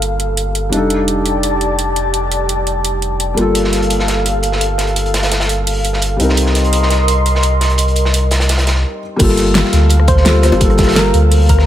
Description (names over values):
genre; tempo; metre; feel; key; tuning
liquid drum and bass; 170 BPM; 4/4; straight; G minor; A4 = 439 Hz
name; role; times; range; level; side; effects
felt-muted upright piano; accompaniment; 0.0-11.7 s; G3 to C5; -18 LUFS; left 1 dB; ping-pong delay
airy breathy pad; sustained chords; 0.0-11.7 s; G4 to C6; -20 LUFS; equal; chorus, sidechain pumping
sub bass with octave; bass; 0.0-11.7 s; F1 to D2; -15 LUFS; equal; none
pop drum kit; drums; 0.0-11.7 s; crash cymbal, hi-hat, rim click, snare drum; -19 LUFS; right 1 dB; none
crunchy breakbeat drum kit; drums; 3.5-11.7 s; hi-hat, snare drum; -21 LUFS; equal; high-pass filter on hats, high-pass filter on snare, high-pass filter on room
electronic kick drum; drums; 9.2-11.6 s; none; -15 LUFS; equal; none
soft struck synth lead; melody; 10.1-11.7 s; Bb4 to C5; -18 LUFS; equal; chorus, ping-pong delay
bongos; percussion; 10.5-10.6 s; none; -20 LUFS; left 3 dB; none
room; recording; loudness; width
light reverb, small room ambience; none; -12 LUFS; side -11 dB against mid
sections
0.0-9.2 A section; 9.2-11.7 B section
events
break 8.8-9.2; drop 9.2-11.7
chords
0.0 Gm9; 0.7 F13; 3.4 Gm9; 6.2 Cm7; 9.2 Gm9